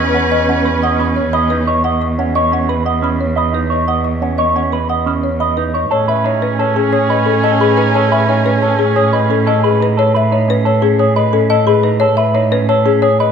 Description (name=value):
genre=classical, minimalist pattern music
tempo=177 BPM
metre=6/4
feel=straight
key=A lydian from 5.9 s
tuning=A4 = 439 Hz
part: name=folk marimba with medium hard mallets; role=melody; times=0.0-13.3 s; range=G#4 to C#6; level=-16 LUFS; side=left 5 dB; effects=none
part: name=clear oboe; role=second line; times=0.0-1.6, 5.9-9.8 s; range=C#4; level=-21 LUFS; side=right 5 dB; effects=none
part: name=rich chamber string section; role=sustained chords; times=0.0-1.6, 5.9-9.8 s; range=C#4 to B4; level=-21 LUFS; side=equal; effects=none
part: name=electric guitar with an envelope filter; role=arpeggios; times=0.0-13.3 s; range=C#4 to D#5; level=-18 LUFS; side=right 5 dB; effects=none
part: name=rich cello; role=bass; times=0.0-13.3 s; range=E2 to A2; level=-17 LUFS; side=right 2 dB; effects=none
room=moderate scoring stage reverb, RT60 1.5 s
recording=none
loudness=-12 LUFS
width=side -7 dB against mid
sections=0.0-5.9 A section; 5.9-13.3 B section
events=none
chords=0.0 Bsus2/E; 5.9 Amaj9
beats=0.15 0.49 0.83 1.17 1.51 | 1.85 2.19 2.52 2.86 3.20 3.54 | 3.88 4.22 4.56 4.90 5.24 5.58 | 5.91 6.25 6.59 6.93 7.27 7.61 | 7.95 8.29 8.63 8.96 9.30 9.64 | 9.98 10.32 10.66 11.00 11.34 11.68 | 12.02 12.36 12.69 13.03